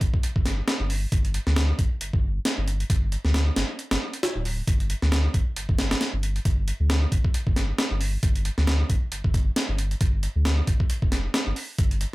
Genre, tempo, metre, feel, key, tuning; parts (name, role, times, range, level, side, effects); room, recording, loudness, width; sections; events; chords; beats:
breakbeat, breaks; 135 BPM; 4/4; swing 57% on 16ths; A4 = 440 Hz
saturated sub bass; bass; 0.0-12.1 s; D1 to D2; -24 LUFS; equal
breakbeat sampler-style drum kit; drums; 0.0-12.1 s; hi-hat, kick drum, snare drum; -24 LUFS; equal
little or no reverb; -22 LUFS; side -20 dB against mid
0.0-12.1 A section
0.23 0.68 | 1.12 1.56 2.01 2.45 | 2.90 3.34 3.79 4.23 | 4.68 5.12 5.57 6.01 | 6.45 6.90 7.34 7.79 | 8.23 8.68 9.12 9.56 | 10.01 10.45 10.90 11.34 | 11.79